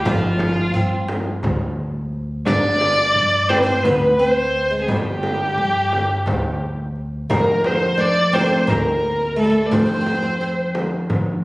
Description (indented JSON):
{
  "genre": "Turkish makam ensemble",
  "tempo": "174 BPM (eighths)",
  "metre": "7/8",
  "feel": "straight",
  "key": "G makam hicaz, F makam rast from 7.3 s",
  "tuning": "A4 = 440 Hz",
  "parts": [
    { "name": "dark violin", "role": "melody", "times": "0.0-10.8 s", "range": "F4 to D5", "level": "-19 LUFS", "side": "equal", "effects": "none" },
    { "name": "oud", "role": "second line", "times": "0.0-10.7 s", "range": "F3 to D4", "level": "-24 LUFS", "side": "right 1 dB", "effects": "slapback echo" },
    { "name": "upright bass", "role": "bass", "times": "0.1-11.4 s", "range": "G1 to F3", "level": "-24 LUFS", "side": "equal", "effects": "none" },
    { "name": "darbuka", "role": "percussion", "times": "0.1-11.3 s", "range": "none", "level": "-30 LUFS", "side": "equal", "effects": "none" },
    { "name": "frame drum", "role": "percussion", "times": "0.1-11.3 s", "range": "none", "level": "-25 LUFS", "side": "equal", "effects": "none" }
  ],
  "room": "wet recital hall reverb, RT60 1.5 s",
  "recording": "recorded on a phone in the room, studio reverb",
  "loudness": "-16 LUFS",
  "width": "side -20 dB against mid",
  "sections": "0.0-7.3 A section; 7.3-11.4 B section",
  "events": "none",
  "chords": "none"
}